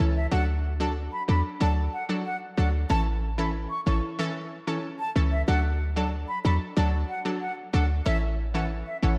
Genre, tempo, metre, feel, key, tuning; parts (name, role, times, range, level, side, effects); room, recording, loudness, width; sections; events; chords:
dancehall; 93 BPM; 4/4; straight; D major; A4 = 440 Hz
analog pluck; accompaniment; 0.0-9.2 s; E3 to A4; -32 LUFS; equal; chorus
short 808-style bass; bass; 0.0-9.2 s; A1 to E2; -27 LUFS; equal
concert flute; melody; 0.2-9.1 s; E5 to C#6; -35 LUFS; equal; tape echo
moderate lush hall reverb, RT60 1.7 s, small room reverb; dreamy mix soaked in reverb; -27 LUFS; mono
0.0-9.2 A section
0.3 D; 2.9 A; 5.5 D; 8.1 A